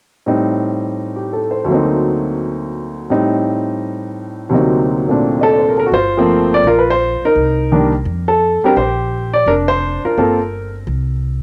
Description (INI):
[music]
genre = jazz piano trio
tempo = 169 BPM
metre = 4/4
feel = swing 63% on 8ths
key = G minor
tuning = A4 = 438 Hz
[part]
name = warm baby grand piano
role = melody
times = 0.3-10.7 s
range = D2 to Eb5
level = -16 LUFS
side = equal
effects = cassette tape, plate reverb
[part]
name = upright bass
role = bass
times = 5.9-11.4 s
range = F1 to F2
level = -23 LUFS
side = equal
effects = none
[sound]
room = wet booth ambience, RT60 0.3 s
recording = home recording on cassette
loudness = -16 LUFS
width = mono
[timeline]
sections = 0.3-5.9 A section; 5.9-11.4 B section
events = none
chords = 0.3 Am7b5; 1.7 D7b9b13; 3.1 Am7b5; 4.5 D7b9b13; 5.9 Gm11; 7.3 Cm9; 8.1 F; 8.8 Bb69; 10.2 Gm11; 10.9 N.C.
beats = | 0.26 0.61 0.96 1.32 | 1.67 2.03 2.38 2.74 | 3.09 3.45 3.80 4.16 | 4.51 4.87 5.22 5.57 | 5.93 6.28 6.64 6.99 | 7.34 7.70 8.05 8.41 | 8.76 9.12 9.47 9.82 | 10.18 10.53 10.88 11.24